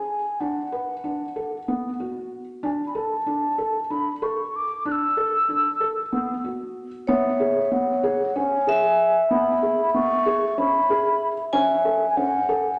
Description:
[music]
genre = contemporary instrumental, chamber music in an uneven meter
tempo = 189 BPM (eighths)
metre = 7/8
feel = straight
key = unclear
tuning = A4 = 440 Hz
[part]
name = mellow hollow wooden flute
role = melody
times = 0.0-12.8 s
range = E5 to F#6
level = -27 LUFS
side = equal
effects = none
[part]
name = felt-muted upright piano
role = arpeggios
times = 0.0-12.7 s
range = B3 to B4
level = -29 LUFS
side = equal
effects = none
[part]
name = vibraphone with medium hard mallets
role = second line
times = 7.1-12.8 s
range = C#5 to G#5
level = -25 LUFS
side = equal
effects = none
[sound]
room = wet recital hall reverb, RT60 1.6 s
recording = nothing above 10.3 kHz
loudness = -23 LUFS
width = mono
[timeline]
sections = 0.0-7.1 A section; 7.1-12.8 B section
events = none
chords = 0.4 D6; 2.6 Bm7/D (rootless); 4.9 E9sus4; 7.1 C#m7; 11.5 Dmaj9#11/C# (rootless)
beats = 0.09 | 0.41 0.73 1.04 1.36 1.68 2.00 2.32 | 2.63 2.95 3.27 3.59 3.91 4.22 4.54 | 4.86 5.18 5.50 5.82 6.13 6.45 6.77 | 7.09 7.41 7.72 8.04 8.36 8.68 9.00 | 9.31 9.63 9.95 10.27 10.59 10.90 11.22 | 11.54 11.86 12.18 12.49

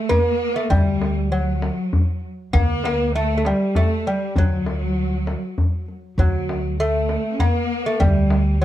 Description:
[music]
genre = Persian modal ensemble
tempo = 99 BPM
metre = 3/4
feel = straight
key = D dastgah chahargah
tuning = A4 = 440 Hz
[part]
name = lute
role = melody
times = 0.0-8.6 s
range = F#3 to Bb3+45c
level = -24 LUFS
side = equal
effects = plate reverb
[part]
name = clear studio cello section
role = second line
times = 0.0-8.6 s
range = F#3 to C#4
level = -24 LUFS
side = equal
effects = none
[part]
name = tombak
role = percussion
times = 0.1-8.4 s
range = none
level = -20 LUFS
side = left 1 dB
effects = none
[part]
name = upright bass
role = bass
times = 0.7-8.6 s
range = D2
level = -22 LUFS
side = equal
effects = none
[sound]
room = moderate studio reverb, RT60 0.5 s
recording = dark, warm production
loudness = -18 LUFS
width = side -13 dB against mid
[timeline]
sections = 0.0-8.6 A section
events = none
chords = none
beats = 0.11 | 0.71 1.32 1.93 | 2.54 3.15 3.75 | 4.36 4.97 5.58 | 6.18 6.79 7.40 | 8.01 8.62

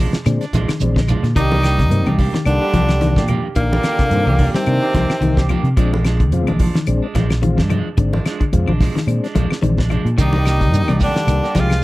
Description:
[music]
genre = afrobeat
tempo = 109 BPM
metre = 4/4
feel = swing 56% on 16ths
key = unclear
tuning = A4 = 440 Hz
[part]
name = clean electric guitar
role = stabs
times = 0.0-11.7 s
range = Eb3 to G4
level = -27 LUFS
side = right 5 dB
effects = spring reverb
[part]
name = fingered electric bass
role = bass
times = 0.0-11.8 s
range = Ab1 to C3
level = -18 LUFS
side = equal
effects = none
[part]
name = damped 70s drum kit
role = drums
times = 0.1-11.8 s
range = hi-hat, kick drum, snare drum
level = -20 LUFS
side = equal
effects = none
[part]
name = shekere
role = percussion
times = 0.1-1.4, 10.2-11.8 s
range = none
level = -26 LUFS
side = right 4 dB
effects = none
[part]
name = mellow tonewheel organ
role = accompaniment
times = 0.3-11.8 s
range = Eb3 to F4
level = -23 LUFS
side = left 4 dB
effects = overdrive, fast rotary speaker
[part]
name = clean electric guitar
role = arpeggios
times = 0.3-11.8 s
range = C3 to G3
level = -23 LUFS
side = left 4 dB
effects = none
[part]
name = claves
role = percussion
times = 0.3-11.8 s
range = none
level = -30 LUFS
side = left 8 dB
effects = none
[part]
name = congas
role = percussion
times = 0.3-11.7 s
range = none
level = -23 LUFS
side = right 2 dB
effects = none
[part]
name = edgy tenor saxophone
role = melody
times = 1.4-5.5, 10.2-11.8 s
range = Bb3 to F4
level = -21 LUFS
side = equal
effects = none
[part]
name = raspy baritone saxophone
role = second line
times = 1.4-5.5, 10.2-11.8 s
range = Bb2 to F3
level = -29 LUFS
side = left 3 dB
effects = none
[part]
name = trombone with bucket mute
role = second line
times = 1.4-5.5, 10.2-11.8 s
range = D3 to Ab3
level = -27 LUFS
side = right 3 dB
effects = none
[sound]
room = little or no reverb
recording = dry, close 1970s-style studio recording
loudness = -14 LUFS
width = side -18 dB against mid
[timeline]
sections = 0.0-1.4 A section; 1.4-11.8 A section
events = none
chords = 0.0 Bb7; 1.4 Cm9; 5.8 Bb7; 10.2 Cm9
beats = 0.25 0.81 | 1.36 1.91 2.46 3.02 | 3.57 4.12 4.67 5.22 | 5.77 6.33 6.88 7.43 | 7.98 8.53 9.08 9.63 | 10.18 10.73 11.28 11.83

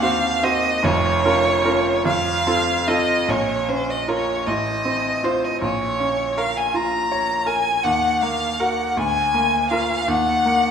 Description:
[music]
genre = classical, romantic duo for violin and grand piano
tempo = 48-55 BPM (dotted quarters)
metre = 6/8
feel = rubato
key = Bb minor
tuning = A4 = 440 Hz
[part]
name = rich violin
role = melody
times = 0.0-10.7 s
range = C5 to Bb5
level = -20 LUFS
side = equal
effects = none
[part]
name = bright grand piano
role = accompaniment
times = 0.0-10.7 s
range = F1 to Db5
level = -22 LUFS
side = right 1 dB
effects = none
[sound]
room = wet recital hall reverb, RT60 1.3 s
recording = minimal, uncompressed stereo recording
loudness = -18 LUFS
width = side -7 dB against mid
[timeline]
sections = 0.0-3.3 A section; 3.3-10.7 B section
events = none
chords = 0.0 Cdim/Eb; 0.8 Bbm/F; 2.1 F; 3.3 Bbm; 4.5 F7/A; 5.6 Bbm; 7.8 Ebm; 9.0 Bb7/D; 10.1 Ebm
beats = | 0.85 2.06 | 3.29 4.46 | 5.61 6.74 | 7.84 8.97 | 10.08

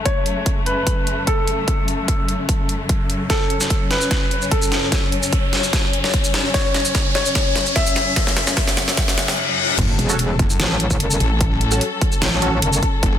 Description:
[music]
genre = heavy wobble dubstep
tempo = 148 BPM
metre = 4/4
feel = half-time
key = F# minor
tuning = A4 = 440 Hz
[part]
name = dark studio string section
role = sustained chords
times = 0.0-13.2 s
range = F#2 to A4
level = -25 LUFS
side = left 4 dB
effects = sidechain pumping, low-pass filter
[part]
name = riser, reverse cymbal and impact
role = sound effects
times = 1.1-11.4 s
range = none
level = -26 LUFS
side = left 2 dB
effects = none
[part]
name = warm baby grand piano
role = melody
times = 0.1-9.4 s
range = A4 to E5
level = -24 LUFS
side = equal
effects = dub echo
[part]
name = dubstep drum kit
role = drums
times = 0.1-13.1 s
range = crash cymbal, hi-hat, shaker, snare drum, toms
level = -22 LUFS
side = equal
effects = overdrive, high-pass filter on snare, high-pass filter on hats, high-pass filter on perc, high-pass filter on toms, high-pass filter on cymbals, high-pass filter on room
[part]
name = electronic kick drum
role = drums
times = 0.1-13.1 s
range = none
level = -21 LUFS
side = equal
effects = overdrive
[part]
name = wobble bass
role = bass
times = 9.8-13.2 s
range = F#1 to A1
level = -19 LUFS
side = equal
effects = chorus, overdrive
[part]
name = metallic wobble bass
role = bass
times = 10.0-12.8 s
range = E1 to A1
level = -20 LUFS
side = equal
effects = chorus, overdrive
[part]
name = supersaw stab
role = stabs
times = 10.1-12.5 s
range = C#4 to A4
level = -26 LUFS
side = right 3 dB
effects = phaser, cassette tape, dub echo
[sound]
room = light reverb, digital ambience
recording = dense, heavily limited modern master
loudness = -16 LUFS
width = side -10 dB against mid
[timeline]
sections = 0.0-9.8 A section; 9.8-13.2 B section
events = build-up 0.0-9.8; filter sweep on string section 0.0-9.8; riser 1.1-9.4; drum fill 3.3-9.4, 9.4-9.8; reverse cymbal 9.0-9.8; drop 9.8-13.2; impact 9.8-11.4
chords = 0.0 F#m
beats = | 0.06 0.46 0.87 1.27 | 1.68 2.08 2.49 2.89 | 3.30 3.70 4.11 4.51 | 4.92 5.33 5.73 6.14 | 6.54 6.95 7.35 7.76 | 8.16 8.57 8.97 9.38 | 9.79 10.19 10.60 11.00 | 11.41 11.81 12.22 12.62 | 13.03

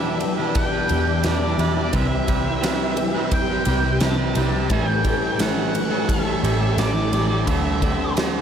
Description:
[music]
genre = rock, shoegaze and dream pop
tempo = 87 BPM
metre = 4/4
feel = straight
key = unclear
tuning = A4 = 439 Hz
[part]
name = octave-fuzz lead guitar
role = melody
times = 0.0-8.1 s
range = D5 to A5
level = -28 LUFS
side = equal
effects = distortion, slapback echo
[part]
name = phased string machine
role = sustained chords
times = 0.0-8.4 s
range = G4 to D6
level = -30 LUFS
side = right 1 dB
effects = ensemble chorus, phaser
[part]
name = picked twelve-string acoustic guitar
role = arpeggios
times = 0.0-8.4 s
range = E3 to G4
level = -30 LUFS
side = left 7 dB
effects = ensemble chorus, slapback echo
[part]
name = thick fuzz guitar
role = riff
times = 0.0-8.4 s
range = E2 to D4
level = -27 LUFS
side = left 10 dB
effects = distortion, lush chorus
[part]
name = twangy electric guitar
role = riff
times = 0.0-8.4 s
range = A2 to B4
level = -25 LUFS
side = right 9 dB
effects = reverse reverb
[part]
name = vintage muted picked electric bass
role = bass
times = 0.0-8.4 s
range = A1 to E2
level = -24 LUFS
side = equal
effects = none
[part]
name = huge arena drum kit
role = drums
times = 0.2-8.3 s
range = kick drum, ride cymbal, snare drum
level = -25 LUFS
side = equal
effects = none
[sound]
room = light reverb, small room ambience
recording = none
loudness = -18 LUFS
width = side -8 dB against mid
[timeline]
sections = 0.0-8.4 A section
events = none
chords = 0.0 Em7; 1.9 Cmaj7; 4.7 A7; 7.5 D7sus4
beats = 0.56 1.25 | 1.94 2.63 3.32 4.01 | 4.70 5.39 6.09 6.78 | 7.47 8.16

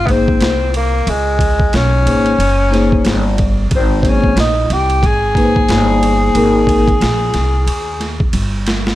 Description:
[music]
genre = hip hop, jazz-hop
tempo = 91 BPM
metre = 4/4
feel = swing 59% on 16ths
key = Ab major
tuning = A4 = 440 Hz
[part]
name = mellow tenor saxophone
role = melody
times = 0.0-8.3 s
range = Ab3 to Ab4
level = -16 LUFS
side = left 1 dB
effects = none
[part]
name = upright bass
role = bass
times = 0.0-8.9 s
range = Gb1 to Eb2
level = -16 LUFS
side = equal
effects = none
[part]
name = vibraphone with soft mallets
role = accompaniment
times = 0.1-6.8 s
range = Bb3 to C5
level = -16 LUFS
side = left 2 dB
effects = none
[part]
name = boom bap sampler-style drum kit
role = drums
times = 0.1-8.9 s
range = hi-hat, kick drum, ride cymbal, snare drum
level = -18 LUFS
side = equal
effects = overdrive
[sound]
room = small room ambience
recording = none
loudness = -11 LUFS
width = side -15 dB against mid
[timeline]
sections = 0.0-8.9 A section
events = drum fill 8.3-8.9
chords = 0.0 Ab; 1.1 Db5; 2.4 Gbadd9; 3.7 Ab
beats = 0.42 | 1.08 1.74 2.39 3.05 | 3.71 4.37 5.03 5.69 | 6.35 7.01 7.67 8.33

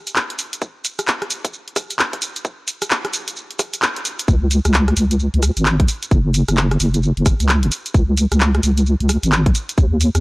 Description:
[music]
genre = UK garage, two-step garage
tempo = 131 BPM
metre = 4/4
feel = swing 62% on 16ths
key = unclear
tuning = A4 = 440 Hz
[part]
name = garage drum kit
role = drums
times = 0.1-10.2 s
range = handclaps, hi-hat, rim click, shaker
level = -20 LUFS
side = equal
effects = none
[part]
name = electronic kick drum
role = drums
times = 0.6-9.9 s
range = none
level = -15 LUFS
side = equal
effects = high-pass filter on kick
[part]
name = deep soft wobble bass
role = bass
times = 4.3-10.2 s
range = F#1 to D#2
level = -15 LUFS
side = equal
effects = chorus
[sound]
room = digital ambience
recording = dry, gritty hardware recording, cassette tape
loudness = -16 LUFS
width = side -24 dB against mid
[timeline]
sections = 0.0-4.3 A section; 4.3-10.2 B section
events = build-up 0.0-4.3; drop 4.3-10.2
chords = none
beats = 0.16 | 0.62 1.07 1.53 1.99 | 2.45 2.91 3.36 3.82 | 4.28 4.74 5.20 5.65 | 6.11 6.57 7.03 7.49 | 7.94 8.40 8.86 9.32 | 9.78

